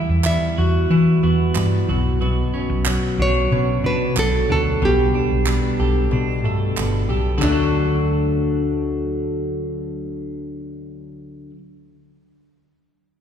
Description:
acoustic pop; 92 BPM; 4/4; straight; D major; A4 = 442 Hz
nylon-string guitar; melody; 0.0-11.5 s; D4 to E5; -23 LUFS; right 2 dB
fingerpicked plugged-in steel-string acoustic guitar; accompaniment; 0.0-11.6 s; B2 to G4; -22 LUFS; left 3 dB
twelve-string electric guitar; arpeggios; 0.0-11.6 s; F#3 to A4; -29 LUFS; right 4 dB
hollow-body short-scale fingered electric bass; bass; 0.1-11.5 s; G1 to E3; -21 LUFS; equal
group handclap; percussion; 0.2-7.7 s; -30 LUFS; right 5 dB
wet church reverb, RT60 2.9 s; recorded in a church or concert hall; -17 LUFS; side -8 dB against mid
0.0-7.4 A section; 7.4-10.0 B section
0.0 Emadd9; 1.9 Bmadd9; 4.8 Gadd9/B; 7.4 D

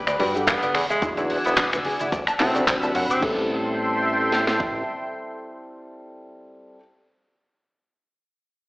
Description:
nu-disco, nu disco; 109 BPM; 4/4; swing 55% on 16ths; A dorian; A4 = 439 Hz
dark concert grand piano; accompaniment; 0.0-6.8 s; C3 to F#5; -29 LUFS; left 1 dB; sidechain pumping, slapback echo
lush unison pad; sustained chords; 0.0-6.2 s; A4 to E6; -27 LUFS; equal; chorus, phaser, sidechain pumping
chorused synth bass; bass; 0.0-4.8 s; D1 to G2; -27 LUFS; equal; sidechain pumping
direct-recorded clean electric guitar; riff; 0.1-3.5 s; B3 to D6; -29 LUFS; equal; lush chorus, slapback echo
damped 70s drum kit; drums; 0.1-3.3 s; cabasa, crash cymbal, finger snaps, handclaps, hi-hat; -26 LUFS; equal; studio reverb
congas; percussion; 0.2-3.2 s; -38 LUFS; right 1 dB
clear tenor saxophone; melody; 0.5-3.2 s; G#3 to C4; -27 LUFS; equal; analog delay
house drum kit; drums; 0.5-4.7 s; kick drum, snare drum; -29 LUFS; equal; studio reverb
moderate plate reverb, RT60 1.1 s; played on a big sound system in a bare room, stone room reverb, AM radio sound; -20 LUFS; side -22 dB against mid
0.0-3.2 A section; 3.2-5.4 B section
drop 0.0-3.2
0.0 Gmaj7; 0.7 E9; 2.1 D13; 3.2 Am7

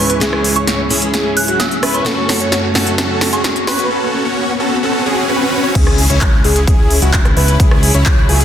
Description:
EDM, festival progressive house; 130 BPM; 4/4; straight; C# minor; A4 = 441 Hz
soft synth bell; melody; 0.0-3.8 s; C#6 to F#6; -22 LUFS; right 1 dB; chorus, phaser, tape echo
picked plugged-in steel-string acoustic guitar; accompaniment; 0.0-3.9 s; G#3 to A4; -23 LUFS; left 1 dB; sidechain pumping, tape echo
dark chamber string section; sustained chords; 0.0-8.4 s; C#2 to E4; -22 LUFS; right 1 dB; sidechain pumping
wide unison lead; arpeggios; 0.0-8.4 s; F#4 to C#5; -21 LUFS; equal; sidechain pumping, tape echo
big supersaw lead; riff; 0.0-8.4 s; C#4 to C#5; -19 LUFS; equal; sidechain pumping, low-pass filter, tape echo
riser and sub drop; sound effects; 1.3-7.6 s; -22 LUFS; left 1 dB
big-room dance drum kit; drums; 0.1-8.4 s; crash cymbal, handclaps, hi-hat, rim click, snare drum; -17 LUFS; equal; soft clipping on snare
fat analog bass; bass; 5.8-8.4 s; C#2; -14 LUFS; equal; sidechain pumping
electronic kick drum; drums; 5.8-8.2 s; -12 LUFS; equal
moderate digital room reverb, RT60 1.1 s, digital ambience; dense, heavily limited modern master; -11 LUFS; side -10 dB against mid
0.0-5.8 A section; 5.8-8.4 B section
build-up 0.0-5.8; drum fill 0.0-3.9; filter sweep on analog synth lead 0.0-5.8; riser 1.3-5.8; drop 5.8-8.4; impact 5.8-7.6
0.0 C#m; 2.1 F#m; 5.8 C#m

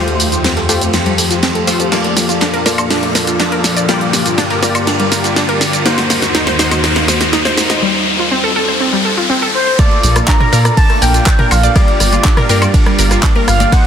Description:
progressive house; 122 BPM; 4/4; straight; Bb major; A4 = 439 Hz
evolving wavetable pad; sustained chords; 0.0-13.9 s; Eb2 to C5; -21 LUFS; left 1 dB; chorus, built-in reverb, phaser, sidechain pumping
supersaw stab; stabs; 0.0-13.9 s; A3 to D5; -19 LUFS; left 2 dB; sidechain pumping, ping-pong delay
riser; sound effects; 0.6-9.8 s; -20 LUFS; left 1 dB
deep house drum kit; drums; 0.1-13.9 s; handclaps, hi-hat, ride cymbal, shaker, snare drum, woodblock; -17 LUFS; right 1 dB; soft clipping on snare, high-pass filter on snare, high-pass filter on hats, high-pass filter on perc, high-pass filter on cymbals, high-pass filter on room
vintage brush drum kit; drums; 0.1-13.8 s; hi-hat, ride cymbal, snare drum; -24 LUFS; right 3 dB; sidechain pumping on cymbals, high-pass filter on cymbals, sidechain pumping on hats, high-pass filter on hats, soft clipping on snare, high-pass filter on snare, high-pass filter on room
glassy wavetable pluck; arpeggios; 0.3-13.8 s; G3 to Eb5; -18 LUFS; equal; chorus, sidechain pumping, ping-pong delay
expressive synth lead; melody; 9.5-13.9 s; C5 to Bb5; -17 LUFS; equal; wide subtle chorus, ping-pong delay
soft round pluck; second line; 9.8-13.9 s; D5 to Bb5; -23 LUFS; right 1 dB; chorus, sidechain pumping, ping-pong delay
electronic kick drum; drums; 9.8-13.8 s; -11 LUFS; equal
deep house drum kit; percussion; 9.8-13.8 s; congas, rim click, toms; -21 LUFS; left 1 dB; soft clipping on snare, sidechain pumping on snare, sidechain pumping on perc, sidechain pumping on toms
dark detuned saw bass; bass; 10.0-13.6 s; G1 to Bb2; -13 LUFS; equal; sidechain pumping
moderate huge ambient reverb, RT60 5.8 s; dense, heavily limited modern master; -10 LUFS; side -8 dB against mid
0.0-9.8 A section; 9.8-13.9 B section
build-up 0.0-9.8; drum fill 0.0-7.8; filter sweep on synth arpeggio sound 0.0-9.8; filter sweep on ambient pad 0.0-9.8; riser 0.6-9.8; drop 9.8-13.9
0.0 Fadd9; 1.9 Bbmaj7; 3.9 Gm7; 5.9 Ebm6; 7.8 F; 9.8 Bbmaj7; 11.8 Gm7

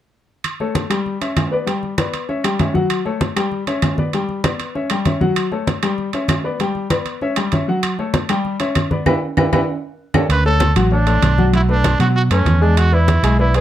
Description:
latin, salsa; 195 BPM; 4/4; straight; A4 = 440 Hz
claves; percussion; 0.4-10.2 s; -28 LUFS; left 4 dB
congas; percussion; 0.4-13.6 s; -20 LUFS; equal
timbales; percussion; 0.4-13.6 s; -24 LUFS; right 6 dB
clear upright piano; accompaniment; 0.6-13.6 s; F#3 to G#5; -20 LUFS; left 2 dB
bright trumpet; melody; 10.3-13.6 s; C#4 to B4; -20 LUFS; right 3 dB
fingered electric bass; bass; 10.3-13.6 s; A1 to B2; -15 LUFS; right 1 dB
moderate studio reverb, RT60 0.6 s; dark, warm production; -15 LUFS; side -12 dB against mid
0.4-10.3 A section; 10.3-13.6 B section
band accent 9.1-10.3; drum fill 9.4-10.3
0.4 A7; 1.1 Em6/G; 1.7 G; 2.3 Em69; 2.9 F#m; 3.5 Em6/G; 4.1 G; 4.8 Em69; 5.4 F#m; 6.0 Em6/G; 6.6 G; 7.2 Em69; 7.8 F#m; 8.4 Em6/G; 9.1 Em; 9.7 A7; 10.3 Dmaj7; 11.5 Bm7; 12.8 E7

